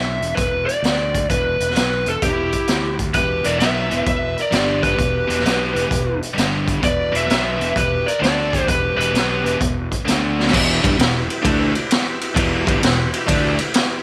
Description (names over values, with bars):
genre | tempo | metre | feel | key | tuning
blues rock power trio and southern rock | 130 BPM | 4/4 | swing 67% on 8ths | E minor | A4 = 440 Hz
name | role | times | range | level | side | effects
lead guitar through a small cranked amp | melody | 0.0-9.6 s | G4 to E5 | -23 LUFS | equal | overdrive, tape echo
fuzz fingered electric bass | bass | 0.0-13.6 s | E1 to D2 | -28 LUFS | equal | overdrive
raw garage drum kit | drums | 0.2-13.9 s | crash cymbal, hi-hat, kick drum, ride cymbal, snare drum | -23 LUFS | equal | none
dark smooth lead guitar | second line | 2.3-9.6 s | E4 to B4 | -31 LUFS | equal | overdrive
biting overdriven guitar | riff | 3.1-13.6 s | E2 to D4 | -25 LUFS | equal | none
overdriven tonewheel organ | sustained chords | 10.5-14.0 s | E4 to F#5 | -28 LUFS | equal | chorus vibrato, slow rotary speaker
room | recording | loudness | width
light reverb | none | -19 LUFS | mono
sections
0.0-10.5 A section; 10.5-14.0 B section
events
drum fill 10.3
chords
0.0 E5; 0.8 N.C.; 1.3 Em; 2.7 Dsus24; 3.1 E5; 4.5 G5; 5.0 Em; 6.4 G5; 6.8 E5; 8.2 D5; 8.7 Em; 10.1 D5; 10.5 Em